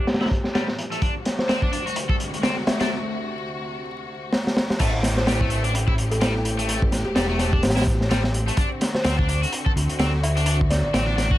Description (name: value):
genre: breakbeat, breaks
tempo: 127 BPM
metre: 4/4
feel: swing 56% on 16ths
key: A dorian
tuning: A4 = 439 Hz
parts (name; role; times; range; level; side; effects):
- clear symphonic string section; sustained chords; 0.0-11.4 s; D2 to G4; -32 LUFS; left 1 dB; sidechain pumping
- overdriven semi-hollow guitar; riff; 0.0-11.4 s; G3 to A4; -29 LUFS; left 1 dB; tube saturation, low-pass filter, tape echo
- riser and downlifter; sound effects; 0.2-8.6 s; none; -35 LUFS; left 1 dB; none
- crunchy breakbeat drum kit; drums; 0.1-11.4 s; crash cymbal, hi-hat, kick drum, snare drum; -22 LUFS; equal; low-pass filter on kick, low-pass filter on hats, low-pass filter on cymbals, low-pass filter on snare, low-pass filter on room
- kalimba; melody; 1.4-10.9 s; G4 to E5; -32 LUFS; equal; small speaker sound, low-pass filter, tape echo
- fat analog bass; bass; 4.8-11.3 s; E1 to D2; -23 LUFS; equal; none
room: light reverb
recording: vinyl crackle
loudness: -20 LUFS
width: side -14 dB against mid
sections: 0.0-4.8 A section; 4.8-11.4 B section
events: build-up 0.0-4.8; filter sweep on kalimba 0.0-4.8; riser 0.2-2.9; break 2.9-4.8; drum fill 4.3-4.8; drop 4.8-11.4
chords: 0.0 Am7; 1.0 D7; 4.8 Am7; 8.6 D7